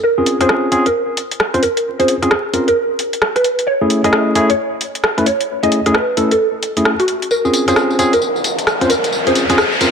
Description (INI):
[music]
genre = UK garage, two-step garage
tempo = 132 BPM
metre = 4/4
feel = swing 63% on 16ths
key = unclear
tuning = A4 = 440 Hz
[part]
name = mallet-like synth pluck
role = melody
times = 0.0-9.8 s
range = Gb4 to D#5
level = -17 LUFS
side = right 1 dB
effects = ensemble chorus, tape echo
[part]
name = tine electric piano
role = stabs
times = 0.2-9.9 s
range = A3 to C5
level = -17 LUFS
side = equal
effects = overdrive, low-pass filter, tape echo
[part]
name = garage drum kit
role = drums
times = 0.3-9.9 s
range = hi-hat, rim click, tambourine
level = -18 LUFS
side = equal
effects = high-pass filter on hats, high-pass filter on perc, high-pass filter on snare
[part]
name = riser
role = sound effects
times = 7.7-9.9 s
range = none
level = -20 LUFS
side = left 1 dB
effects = none
[sound]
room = moderate lush hall reverb, RT60 2.1 s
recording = vinyl crackle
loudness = -13 LUFS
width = side -6 dB against mid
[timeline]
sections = 0.0-9.9 A section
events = build-up 0.0-9.9; riser 7.7-9.9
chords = 0.0 Bbm7; 3.4 Amaj7; 7.3 Bbm7